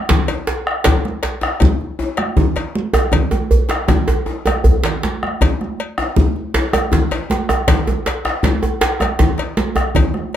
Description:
west african traditional, West African drum ensemble; 105 BPM (dotted quarters); 12/8; straight
bombo; percussion; 0.1-10.2 s; -18 LUFS; left 2 dB
congas; percussion; 0.1-10.4 s; -22 LUFS; right 5 dB
djembe; percussion; 0.1-10.2 s; -22 LUFS; left 2 dB
djembe; percussion; 0.1-9.9 s; -18 LUFS; right 2 dB
cowbell; percussion; 0.3-10.4 s; -24 LUFS; left 4 dB
moderate small room reverb, RT60 0.5 s; close, detailed microphones; -15 LUFS; side -10 dB against mid
0.0-10.4 A section
drum fill 4.6-5.4

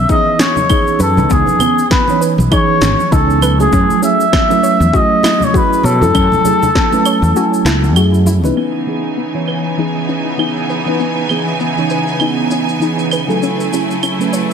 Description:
sunset chillout; 99 BPM; 4/4; swing 58% on 16ths; C# minor; A4 = 440 Hz
trumpet with cup mute; melody; 0.0-8.0 s; G#4 to E5; -14 LUFS; left 2 dB; tape echo
mellow FM electric piano; accompaniment; 0.0-14.5 s; E3 to G#5; -17 LUFS; moving between left 1 dB and right 5 dB; chorus, phaser, auto-pan, low-pass filter, tape echo
soft round pluck; arpeggios; 0.0-14.5 s; B3 to C#5; -22 LUFS; left 3 dB; chorus, tape echo
fretless electric bass; bass; 0.0-8.5 s; G#1 to B2; -13 LUFS; equal
electronic kick drum; drums; 0.1-6.9 s; -16 LUFS; equal; overdrive
electronic shaker, snare drum and claves; drums; 0.1-14.5 s; -20 LUFS; right 1 dB; overdrive, low-pass filter on perc, low-pass filter on snare, low-pass filter on room
congas; percussion; 0.4-8.5 s; -24 LUFS; right 2 dB
rich symphonic string section; sustained chords; 8.6-14.5 s; C#3 to G#5; -19 LUFS; right 1 dB; low-pass filter
moderate lush hall reverb, RT60 2.1 s; dense, heavily limited modern master; -11 LUFS; side -7 dB against mid
0.0-8.6 A section; 8.6-14.5 B section
kick drops out 7.4-8.6; filter sweep on FM electric piano 8.6-14.5
0.0 C#m9; 13.4 F#m9

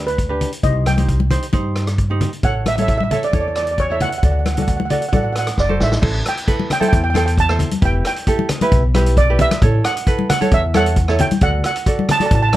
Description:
calypso; 134 BPM; 4/4; straight; A4 = 440 Hz
steel pan; melody; 0.0-12.6 s; B4 to A5; -20 LUFS; right 2 dB
ukulele; accompaniment; 0.0-12.6 s; D4 to D5; -22 LUFS; right 2 dB
upright bass; bass; 0.0-12.6 s; E1 to G2; -18 LUFS; equal
vintage drum kit; drums; 0.1-12.6 s; crash cymbal, hi-hat, kick drum, rim click, snare drum; -20 LUFS; equal
congas; percussion; 0.4-12.6 s; -21 LUFS; left 3 dB
light reverb; dark, warm production; -14 LUFS; side -14 dB against mid
0.0-6.0 A section; 6.0-12.6 B section
drum fill 5.6-6.0
0.0 G; 0.6 Cm; 2.4 A; 4.2 D; 6.0 Am7; 7.8 Em; 9.6 A6; 11.4 D

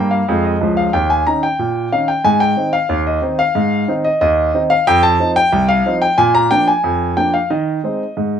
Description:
ragtime piano; 91 BPM; 2/4; straight; Ab major; A4 = 441 Hz
clear concert grand piano; solo; 0.0-8.4 s; C2 to Bb5; -13 LUFS; equal
moderate studio reverb, RT60 0.5 s; -13 LUFS; side -8 dB against mid
0.0-8.4 A section
0.0 Ab5; 0.9 Eb5; 2.2 Ab; 4.9 F5; 6.2 Bb; 7.5 Ab/Eb

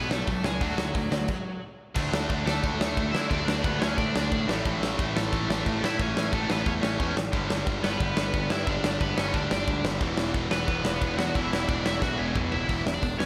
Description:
punk rock; 179 BPM; 4/4; straight; A4 = 440 Hz
cranked stack guitar; melody; 0.0-13.3 s; F#3 to F#5; -34 LUFS; equal; overdrive
sludgy distorted guitar; riff; 0.0-13.3 s; E2 to D4; -36 LUFS; equal; overdrive
tight distorted guitar; riff; 0.0-13.3 s; E2 to D4; -35 LUFS; equal; distortion, slapback echo
fuzz picked electric bass; bass; 0.0-13.3 s; E1 to D3; -35 LUFS; equal; overdrive
big rock drum kit; drums; 0.1-13.3 s; crash cymbal, hi-hat, kick drum, snare drum, toms; -31 LUFS; equal
light reverb, small room ambience; -27 LUFS; mono
0.0-2.0 A section; 2.0-12.7 B section
stop 1.3-2.0; drum fill 12.0-12.7
0.0 B5; 0.6 D; 4.5 A; 7.3 G; 10.0 E5

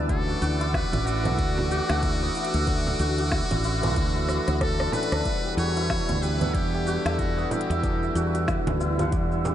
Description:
organic downtempo; 93 BPM; 4/4; swing 59% on 16ths; E dorian; A4 = 443 Hz
overdriven tine electric piano; accompaniment; 0.0-9.5 s; E3 to F#5; -31 LUFS; moving between left 2 dB and right 6 dB; auto-pan, sidechain pumping, tape echo
warm analog pad; sustained chords; 0.0-5.2 s; F#5 to D6; -37 LUFS; left 1 dB; chorus, sidechain pumping
santur; arpeggios; 0.0-9.5 s; B3 to E5; -30 LUFS; left 1 dB; tape echo
woody fretless electric bass; bass; 0.0-9.5 s; A1 to E2; -27 LUFS; equal
trumpet with metal mute; melody; 0.1-8.2 s; F#4 to C#5; -32 LUFS; equal; tape echo
electronic kick drum; drums; 0.1-9.3 s; -30 LUFS; equal; overdrive, small room ambience
organic electronic drum kit; drums; 0.1-9.5 s; congas, hi-hat, rim click, shaker, snare drum; -34 LUFS; right 1 dB; small room ambience
frame drum; percussion; 1.6-9.5 s; -37 LUFS; right 3 dB
moderate huge ambient reverb, RT60 8.4 s; dreamy mix soaked in reverb, nothing above 10.4 kHz; -22 LUFS; side -11 dB against mid
0.0-5.3 A section; 5.3-9.5 A section
drum fill 4.3-5.3
0.1 Dmaj7; 5.3 Em7

